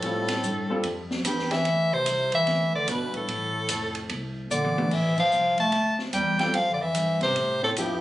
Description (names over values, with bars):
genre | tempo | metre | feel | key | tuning
modal jazz | 147 BPM | 4/4 | swing 64% on 8ths | D dorian | A4 = 440 Hz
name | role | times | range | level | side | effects
bright soprano saxophone | melody | 0.0-8.0 s | G4 to A5 | -25 LUFS | equal | none
warm bass clarinet | second line | 0.0-8.0 s | G2 to A3 | -29 LUFS | equal | none
clear concert grand piano | accompaniment | 0.0-0.8, 4.8-8.0 s | F3 to B4 | -30 LUFS | left 1 dB | none
upright bass | bass | 0.0-8.0 s | F1 to A2 | -34 LUFS | equal | none
open jazz drum kit | drums | 0.0-7.9 s | crash cymbal, hi-hat, kick drum, ride cymbal, snare drum, toms | -33 LUFS | right 1 dB | none
room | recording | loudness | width
moderate club reverb, RT60 0.6 s | recorded on a phone in the room, club reverb, compression, nothing above 10.4 kHz | -23 LUFS | side -15 dB against mid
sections
0.0-8.0 A section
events
drum fill 4.5-4.9; band accent 5.1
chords
0.0 Dm11